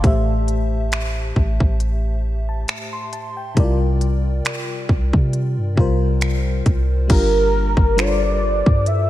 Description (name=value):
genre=contemporary R&B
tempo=68 BPM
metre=4/4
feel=swing 54% on 16ths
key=unclear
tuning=A4 = 440 Hz
part: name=FM electric piano with soft pad layer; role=accompaniment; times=0.0-9.1 s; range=A2 to C6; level=-23 LUFS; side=left 2 dB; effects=chorus, tremolo
part: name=warm 808-style bass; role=bass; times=0.0-9.1 s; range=G1 to C3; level=-19 LUFS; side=equal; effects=none
part: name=trap drum kit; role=drums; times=0.0-9.1 s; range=crash cymbal, finger snaps, hi-hat, kick drum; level=-20 LUFS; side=equal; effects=vintage 12-bit sampler grit
part: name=warm velvety synth lead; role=melody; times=7.1-9.1 s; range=Bb4 to E5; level=-19 LUFS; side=right 1 dB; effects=chorus, ping-pong delay
room=light reverb, digital ambience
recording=none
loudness=-16 LUFS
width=side -14 dB against mid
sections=0.0-7.1 A section; 7.1-9.1 B section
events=none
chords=0.0 Am7; 3.6 C9sus4; 7.1 Gm7